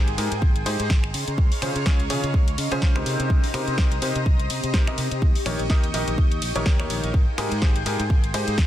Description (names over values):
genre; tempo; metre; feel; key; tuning
piano house; 125 BPM; 4/4; swing 57% on 16ths; unclear; A4 = 443 Hz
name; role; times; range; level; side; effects
analog string pad; sustained chords; 0.0-8.7 s; Ab4 to G6; -33 LUFS; equal; ensemble chorus, sidechain pumping
bright upright piano; riff; 0.0-8.5 s; C3 to Eb5; -28 LUFS; left 1 dB; sidechain pumping, dub echo
fingered electric bass; bass; 0.0-8.7 s; Ab1 to Db3; -29 LUFS; equal; tube saturation, sidechain pumping
ethereal airy pad; texture; 0.0-8.7 s; C4 to C6; -33 LUFS; equal; ensemble chorus, built-in reverb, sidechain pumping
house drum kit; drums; 0.1-8.7 s; finger snaps, hi-hat, ride cymbal, snare drum; -30 LUFS; equal; soft clipping on snare
electronic kick drum; drums; 0.4-8.7 s; none; -20 LUFS; equal; none
room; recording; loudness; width
little or no reverb; dense, heavily limited modern master; -20 LUFS; side -12 dB against mid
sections
0.0-8.7 A section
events
none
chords
0.0 Abmaj7; 1.1 Dbmaj7; 3.1 Cm7; 5.2 Eb7; 7.1 Abmaj7